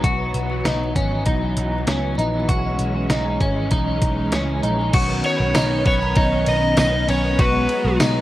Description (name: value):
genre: dream pop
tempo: 98 BPM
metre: 4/4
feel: straight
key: B major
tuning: A4 = 440 Hz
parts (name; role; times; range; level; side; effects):
- string machine, violas; sustained chords; 0.0-8.2 s; D#3 to C#4; -25 LUFS; equal; ensemble chorus
- clean electric guitar; arpeggios; 0.0-8.2 s; B3 to F#4; -24 LUFS; left 1 dB; lush chorus, tape echo
- vintage muted picked electric bass; bass; 0.0-8.2 s; G#1 to C#2; -23 LUFS; equal; none
- detuned 8-bit digital drum machine; drums; 0.0-8.1 s; crash cymbal, hi-hat, kick drum, ride cymbal, snare drum, tambourine; -22 LUFS; equal; none
- overdriven slide guitar; melody; 5.3-8.0 s; B4 to D#5; -22 LUFS; equal; tape echo
- glockenspiel with hard plastic mallets; texture; 5.4-7.7 s; A#5 to B5; -32 LUFS; right 5 dB; tape echo
room: light reverb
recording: echo-heavy mix, vinyl crackle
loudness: -17 LUFS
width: side -15 dB against mid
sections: 0.0-4.9 A section; 4.9-8.2 B section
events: none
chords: 0.0 F#9sus4; 4.9 Bmaj9; 7.4 G#m7/B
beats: | 0.04 0.65 1.26 1.88 | 2.49 3.10 3.71 4.33 | 4.94 5.55 6.16 6.78 | 7.39 8.00